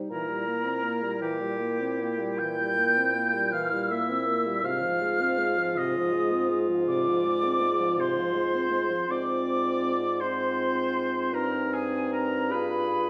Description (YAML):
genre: classical, slow romantic movement for wind quintet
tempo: 54 BPM (dotted quarters)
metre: 12/8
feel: rubato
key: unclear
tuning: A4 = 442 Hz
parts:
  - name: dark French horn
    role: accompaniment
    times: 0.0-13.1 s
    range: C3 to F4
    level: -35 LUFS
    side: equal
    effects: none
  - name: mellow clarinet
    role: accompaniment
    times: 0.0-13.1 s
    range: Eb4 to Ab4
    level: -33 LUFS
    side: equal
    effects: none
  - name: hollow concert flute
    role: melody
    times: 0.1-13.1 s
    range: G5 to G6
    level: -33 LUFS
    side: equal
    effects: none
  - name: warm oboe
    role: second line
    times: 0.1-13.1 s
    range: G4 to G5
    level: -33 LUFS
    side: equal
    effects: none
  - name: mellow bassoon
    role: bass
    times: 0.1-13.1 s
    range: G2 to Bb2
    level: -35 LUFS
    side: equal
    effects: none
room: wet recital hall reverb, RT60 1.3 s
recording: none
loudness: -27 LUFS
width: mono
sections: 0.0-13.1 A section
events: none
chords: 0.1 C7/Bb; 4.6 Fm/Ab; 11.3 Cm/G; 12.5 G7b9